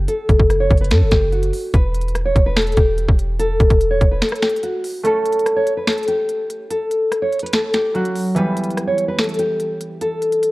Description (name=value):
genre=hip hop, trap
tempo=145 BPM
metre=4/4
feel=half-time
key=F# phrygian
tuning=A4 = 440 Hz
part: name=nylon-string guitar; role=melody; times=0.0-10.5 s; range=F#4 to C#5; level=-19 LUFS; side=equal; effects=low-pass filter
part: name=warm 808-style bass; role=bass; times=0.0-4.2 s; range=E1 to F#2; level=-18 LUFS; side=equal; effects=none
part: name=trap drum kit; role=drums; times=0.1-10.5 s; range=finger snaps, hi-hat, kick drum, rim click, snare drum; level=-18 LUFS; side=equal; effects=overdrive
part: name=concert harp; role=accompaniment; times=5.0-10.5 s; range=E3 to A4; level=-22 LUFS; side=right 1 dB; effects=low-pass filter
room=light reverb, small room ambience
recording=worn, warbling old tape, cassette tape, warbly pitch drift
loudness=-15 LUFS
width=side -20 dB against mid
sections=0.0-10.5 A section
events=break 4.2-5.0, 5.0-10.5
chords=0.0 F#m; 1.7 Em; 5.0 F#m; 8.4 Em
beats=| 0.08 0.50 0.91 1.32 | 1.74 2.15 2.57 2.98 | 3.39 3.81 4.22 4.63 | 5.05 5.46 5.88 6.29 | 6.70 7.12 7.53 7.95 | 8.36 8.77 9.19 9.60 | 10.01 10.43